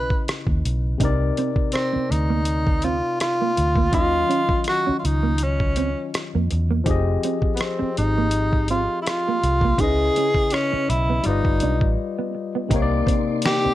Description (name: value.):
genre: R&B, neo-soul.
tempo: 82 BPM.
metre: 4/4.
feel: swing 55% on 16ths.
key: unclear.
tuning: A4 = 440 Hz.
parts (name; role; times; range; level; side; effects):
breathy tenor saxophone; melody; 0.0-13.7 s; B3 to Cb5; -22 LUFS; equal; none.
barky tine electric piano; accompaniment; 0.0-13.7 s; C3 to Eb5; -27 LUFS; left 5 dB; none.
vintage muted fingered electric bass; bass; 0.0-13.7 s; F1 to F2; -22 LUFS; equal; none.
dusty soul sampler-style drum kit; drums; 0.1-13.6 s; hi-hat, kick drum, rim click, snare drum; -23 LUFS; equal; none.
mellow electric guitar; second line; 1.0-13.7 s; Bb3 to Eb4; -27 LUFS; right 7 dB; ensemble chorus.
tonewheel organ; sustained chords; 12.7-13.7 s; Bb3 to D6; -31 LUFS; equal; chorus vibrato, slow rotary speaker.
room: light reverb.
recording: none.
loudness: -19 LUFS.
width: side -14 dB against mid.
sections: 0.0-12.7 A section; 12.7-13.7 B section.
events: break 12.0-12.7.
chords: 0.0 Dbm9; 1.0 Cm9; 3.9 Ebm9; 6.9 Fm9; 9.8 Dbm9; 11.3 G7b13; 12.7 Cm9.